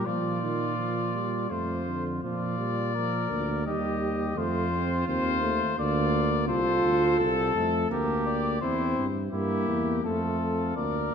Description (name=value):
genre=classical, imitative canzona for brass ensemble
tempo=84 BPM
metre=3/4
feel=straight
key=unclear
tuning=A4 = 440 Hz
part: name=warm cornet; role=melody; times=0.0-11.1 s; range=G4 to Eb5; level=-31 LUFS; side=left 8 dB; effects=none
part: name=mellow trumpet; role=second line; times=0.0-11.1 s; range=E4 to Bb4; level=-34 LUFS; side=right 5 dB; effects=none
part: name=mellow trombone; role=accompaniment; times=0.0-11.1 s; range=D3 to F4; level=-30 LUFS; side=right 1 dB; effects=none
part: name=warm tuba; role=bass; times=0.0-11.1 s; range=C2 to Bb2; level=-30 LUFS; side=right 2 dB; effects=none
room=wet scoring stage reverb, RT60 1.7 s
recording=none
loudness=-25 LUFS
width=side -7 dB against mid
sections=0.0-2.2 A section; 2.2-10.8 B section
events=none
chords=0.1 Fsus4/Bb; 1.5 F; 2.2 Bb; 3.7 Eb; 4.4 F; 5.8 Bb/D; 6.5 F/C; 7.9 Gm/D; 8.6 C/E; 10.0 F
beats=| 0.06 0.79 1.51 | 2.23 2.95 3.66 | 4.37 5.08 5.78 | 6.49 7.20 7.90 | 8.61 9.33 10.04 | 10.76